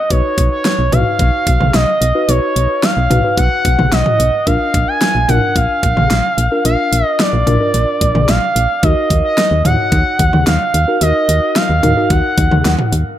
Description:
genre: synth-pop.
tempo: 110 BPM.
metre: 4/4.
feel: straight.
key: unclear.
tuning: A4 = 440 Hz.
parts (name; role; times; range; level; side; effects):
expressive portamento lead; melody; 0.0-12.9 s; C#5 to G#5; -15 LUFS; right 1 dB; chorus, dub echo.
muted felt-like synth keys; accompaniment; 0.1-12.7 s; D4 to C#5; -22 LUFS; left 1 dB; chorus, dub echo.
solid FM bass; bass; 0.1-13.0 s; A#1 to D#2; -15 LUFS; equal; none.
pop drum kit; drums; 0.1-13.1 s; hi-hat, kick drum, snare drum, toms; -16 LUFS; equal; overdrive.
room: moderate plate reverb, RT60 1.2 s, digital ambience.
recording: echo-heavy mix.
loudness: -11 LUFS.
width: side -12 dB against mid.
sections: 0.0-13.2 A section.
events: none.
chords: 0.1 Badd9; 4.5 A#; 8.8 D#madd9.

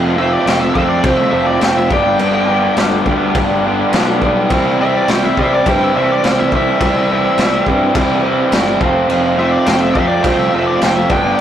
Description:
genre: garage rock duo or trio.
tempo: 104 BPM.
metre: 4/4.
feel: straight.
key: unclear.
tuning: A4 = 440 Hz.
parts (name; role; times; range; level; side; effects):
raw garage guitar; riff; 0.0-11.4 s; F2 to G4; -14 LUFS; right 1 dB; overdrive.
fuzz picked electric bass; bass; 0.0-11.3 s; F1 to C3; -21 LUFS; equal; overdrive, tube saturation.
octave-fuzz lead guitar; melody; 0.2-11.4 s; D5 to G5; -20 LUFS; left 2 dB; distortion, slapback echo.
raw garage drum kit; drums; 0.5-11.4 s; crash cymbal, kick drum, snare drum; -18 LUFS; left 1 dB; none.
room: moderate studio reverb, RT60 0.5 s.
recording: rough rehearsal-room recording, tube saturation.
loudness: -11 LUFS.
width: side -10 dB against mid.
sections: 0.0-11.4 A section.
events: none.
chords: 0.0 F; 1.9 G; 4.5 C; 8.8 F.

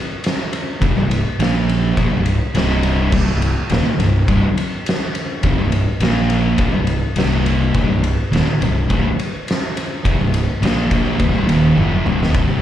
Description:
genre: stoner and doom metal.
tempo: 104 BPM.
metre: 4/4.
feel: straight.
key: C minor.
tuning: A4 = 440 Hz.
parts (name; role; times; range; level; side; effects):
oversized low-tuned drum kit; drums; 0.2-12.5 s; crash cymbal, kick drum, ride cymbal, snare drum, toms; -20 LUFS; equal; none.
thick fuzz guitar; riff; 0.8-12.6 s; C2 to Bb3; -19 LUFS; left 3 dB; distortion.
thick fuzz guitar; riff; 0.8-12.6 s; C2 to Bb3; -23 LUFS; right 8 dB; distortion.
thick fuzz guitar; riff; 0.8-12.3 s; C2 to Bb3; -25 LUFS; right 2 dB; none.
fuzz fingered electric bass; bass; 0.8-12.6 s; C1 to Bb1; -21 LUFS; equal; overdrive, tube saturation.
room: light reverb, studio reverb.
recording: live gig heard through the venue's PA, club reverb.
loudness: -15 LUFS.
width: side -11 dB against mid.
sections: 0.0-12.3 A section.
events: drum fill 11.8-12.3.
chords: 0.0 C5; 1.4 Bb5; 2.0 Cm; 6.0 Bb5; 6.6 Cm.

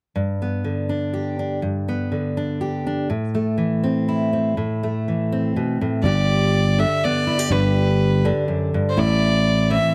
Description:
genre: folk.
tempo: 122 BPM.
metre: 3/4.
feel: straight.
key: G major.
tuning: A4 = 440 Hz.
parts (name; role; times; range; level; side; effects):
fingerpicked steel-string acoustic guitar; accompaniment; 0.2-9.9 s; F#2 to G4; -23 LUFS; equal; none.
rich fiddle; melody; 6.0-9.9 s; B4 to E5; -24 LUFS; equal; slapback echo.
picked electric bass; bass; 6.0-9.8 s; G1 to A1; -21 LUFS; equal; none.
room: little or no reverb.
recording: dry, close 1970s-style studio recording.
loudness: -21 LUFS.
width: mono.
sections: 0.2-6.0 A section; 6.0-9.9 B section.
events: none.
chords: 0.2 G; 3.1 Am; 6.0 G; 9.0 Am.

